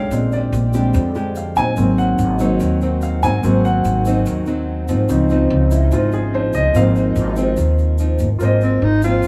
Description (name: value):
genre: bossa nova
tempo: 145 BPM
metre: 4/4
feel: straight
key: Ab major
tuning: A4 = 439 Hz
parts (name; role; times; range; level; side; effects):
- nylon-string guitar; accompaniment; 0.0-9.3 s; F2 to G4; -23 LUFS; equal; none
- warm grand piano; accompaniment; 0.0-9.3 s; F3 to Ab5; -22 LUFS; equal; none
- lush unison pad; sustained chords; 0.0-8.4 s; C3 to G4; -30 LUFS; equal; none
- upright bass; bass; 0.0-9.3 s; Ab1 to F2; -21 LUFS; equal; none
- egg shaker; percussion; 0.1-9.3 s; none; -45 LUFS; equal; none
- breathy tenor saxophone; melody; 8.6-9.3 s; C4 to F4; -20 LUFS; equal; none
room: light reverb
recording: none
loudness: -17 LUFS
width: mono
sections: 0.0-8.4 A section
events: grand piano solo 0.0-8.4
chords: 0.1 Bb13; 1.8 Ab7; 5.1 Dbmaj9; 6.8 Ab6